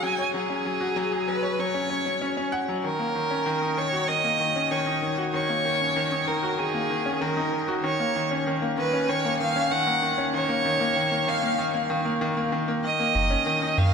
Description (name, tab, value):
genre	piano and strings electronica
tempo	96 BPM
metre	4/4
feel	straight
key	F# major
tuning	A4 = 440 Hz
part	rich violin	melody	0.0-13.9 s	G#4 to G#5	-25 LUFS	right 1 dB	shimmer reverb
part	bright grand piano	riff	0.0-13.9 s	D#3 to F#5	-26 LUFS	left 2 dB	shimmer reverb
part	warm sub bass	bass	13.2-13.9 s	F#1 to F#2	-22 LUFS	right 1 dB	none
room	wet lush hall reverb, RT60 2.7 s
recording	none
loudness	-23 LUFS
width	side -6 dB against mid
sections	0.0-12.8 A section; 12.8-13.9 B section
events	build-up 0.0-12.8; break 11.6-12.8; drop 12.8-13.9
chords	0.0 C#sus4; 2.8 F#6; 7.8 D#7(no3); 12.8 F#6